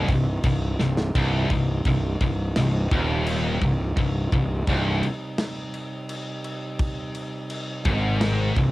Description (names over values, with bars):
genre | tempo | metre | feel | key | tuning
heavy metal | 85 BPM | 4/4 | straight | C minor | A4 = 440 Hz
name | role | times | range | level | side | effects
pipe organ, flutes | sustained chords | 0.0-8.7 s | C3 to Eb4 | -34 LUFS | right 2 dB | cassette tape
high-gain distorted guitar | riff | 0.0-8.7 s | C2 to Ab2 | -30 LUFS | right 5 dB | distortion, cassette tape
scooped high-gain guitar | riff | 0.0-8.7 s | C2 to Ab2 | -25 LUFS | left 2 dB | distortion, cassette tape
fuzz fingered electric bass | bass | 0.0-8.7 s | C1 to Ab1 | -25 LUFS | equal | overdrive
modern studio drum kit | drums | 0.1-8.7 s | crash cymbal, kick drum, snare drum | -28 LUFS | equal | cassette tape
room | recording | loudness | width
light reverb | home recording on cassette | -22 LUFS | side -18 dB against mid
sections
0.0-8.7 A section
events
half time 0.0-8.7; drum fill 0.8-1.1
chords
0.0 Cm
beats
0.44 | 1.15 1.85 2.56 3.27 | 3.97 4.68 5.39 6.10 | 6.80 7.51 8.22